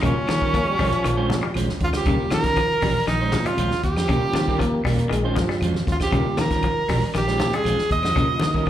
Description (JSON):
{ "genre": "afrobeat", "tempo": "118 BPM", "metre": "4/4", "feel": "straight", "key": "Eb mixolydian", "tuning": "A4 = 442 Hz", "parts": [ { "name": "bright tenor saxophone", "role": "melody", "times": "0.0-8.7 s", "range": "Db4 to Eb5", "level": "-24 LUFS", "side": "right 2 dB", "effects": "slapback echo" }, { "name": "tine electric piano", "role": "accompaniment", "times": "0.0-8.6 s", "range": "G3 to F4", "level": "-32 LUFS", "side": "left 2 dB", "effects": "medium stereo tremolo, slapback echo" }, { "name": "clean electric guitar", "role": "arpeggios", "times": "0.0-8.7 s", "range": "Db3 to G3", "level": "-29 LUFS", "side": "left 6 dB", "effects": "slapback echo" }, { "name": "clean electric guitar", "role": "stabs", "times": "0.0-8.7 s", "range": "G3 to C5", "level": "-30 LUFS", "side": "right 7 dB", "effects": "slapback echo" }, { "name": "fingered electric bass", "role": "bass", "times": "0.0-8.7 s", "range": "Bb1 to Eb3", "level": "-25 LUFS", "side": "equal", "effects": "none" }, { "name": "vintage drum kit", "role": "drums", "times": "0.0-8.7 s", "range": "hi-hat, kick drum, snare drum", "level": "-28 LUFS", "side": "equal", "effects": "none" }, { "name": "congas", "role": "percussion", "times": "0.0-8.7 s", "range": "none", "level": "-28 LUFS", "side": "equal", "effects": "slapback echo" }, { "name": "claves", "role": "percussion", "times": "0.3-8.7 s", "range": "none", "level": "-41 LUFS", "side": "left 4 dB", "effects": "none" }, { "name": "breathy bass trombone", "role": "second line", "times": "0.5-5.7 s", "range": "F3 to C4", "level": "-27 LUFS", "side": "left 1 dB", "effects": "slapback echo" } ], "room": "light reverb, small room reverb", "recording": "live gig heard through the venue's PA, club reverb", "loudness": "-19 LUFS", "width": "side -11 dB against mid", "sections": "0.0-8.7 A section", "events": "none", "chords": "0.0 Eb9; 1.1 Bbm9; 2.1 Eb9; 3.1 Bbm9; 4.1 Eb9; 5.1 Bbm9; 6.1 Eb9; 7.1 Bbm9; 8.2 Eb9", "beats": "| 0.03 0.54 1.05 1.56 | 2.07 2.58 3.09 3.60 | 4.10 4.61 5.12 5.63 | 6.13 6.64 7.15 7.66 | 8.16 8.67" }